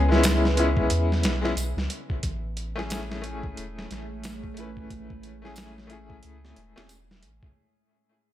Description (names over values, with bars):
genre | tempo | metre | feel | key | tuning
trip hop | 90 BPM | 4/4 | swing 60% on 16ths | unclear | A4 = 440 Hz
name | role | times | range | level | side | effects
bright upright piano | accompaniment | 0.0-6.9 s | G#3 to B4 | -27 LUFS | left 2 dB | tremolo, tape echo
deep dark ambient pad | sustained chords | 0.0-7.5 s | A3 to E5 | -38 LUFS | right 2 dB | chorus, built-in reverb
soft dub sub bass | bass | 0.0-7.4 s | E1 to E2 | -27 LUFS | equal | none
boom bap sampler-style drum kit | drums | 0.1-7.6 s | hi-hat, kick drum, snare drum | -30 LUFS | equal | none
tambourine | percussion | 0.2-7.1 s | none | -36 LUFS | right 2 dB | none
room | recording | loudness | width
digital ambience | none | -23 LUFS | side -12 dB against mid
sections
0.0-7.6 A section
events
fade-out 0.0-7.6; filter sweep on ambient pad 0.0-7.6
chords
0.0 C#m7; 2.2 Amaj7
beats
0.23 0.90 1.56 | 2.23 2.90 3.56 4.23 | 4.90 5.56 6.23 6.90